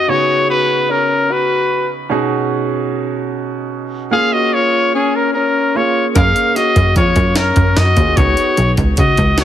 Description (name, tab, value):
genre	progressive instrumental, band music in an uneven meter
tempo	148 BPM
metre	5/4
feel	straight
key	Db mixolydian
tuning	A4 = 442 Hz
part	clear trumpet	melody	0.0-9.4 s	Ab4 to F5	-15 LUFS	left 1 dB	ping-pong delay
part	warm alto saxophone	second line	0.0-9.4 s	Db4 to Bb4	-20 LUFS	left 5 dB	none
part	clear concert grand piano	accompaniment	0.0-9.4 s	Cb3 to F5	-20 LUFS	right 4 dB	none
part	plucky analog bass	bass	6.2-9.4 s	Cb2 to Gb2	-14 LUFS	equal	none
part	jungle sampler-style drum kit	drums	6.2-9.4 s	hi-hat, kick drum, snare drum	-16 LUFS	equal	none
room	light reverb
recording	heavily compressed radio sound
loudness	-12 LUFS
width	side -11 dB against mid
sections	0.0-9.4 A section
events	none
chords	0.1 Db7sus4; 2.1 Cb6; 4.1 Bbm7; 6.2 Gbmaj7; 8.2 Db7sus4